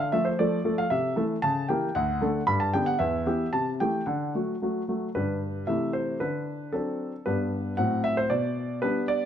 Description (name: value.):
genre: classical-period piano sonatina.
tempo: 114 BPM.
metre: 2/4.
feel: straight.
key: G major.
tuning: A4 = 440 Hz.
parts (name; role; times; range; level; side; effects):
warm grand piano; solo; 0.0-9.2 s; D2 to B5; -25 LUFS; equal; none.
room: moderate recital hall reverb, RT60 1.5 s.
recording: close, detailed microphones.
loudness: -25 LUFS.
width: side -9 dB against mid.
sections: 0.0-5.1 A section; 5.1-9.3 B section.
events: none.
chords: 0.0 Dm; 0.9 Am/C; 1.4 C#dim7; 1.9 D; 2.5 G; 3.0 Em; 3.5 Am7/C; 4.1 D; 5.1 G; 5.7 Am/C; 6.2 D7; 7.3 G; 7.8 F#dim/A; 8.3 G/B.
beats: 0.39 | 0.91 1.43 | 1.94 2.46 | 2.99 3.52 | 4.06 4.61 | 5.15 5.68 | 6.21 6.73 | 7.26 7.78 | 8.30 8.82.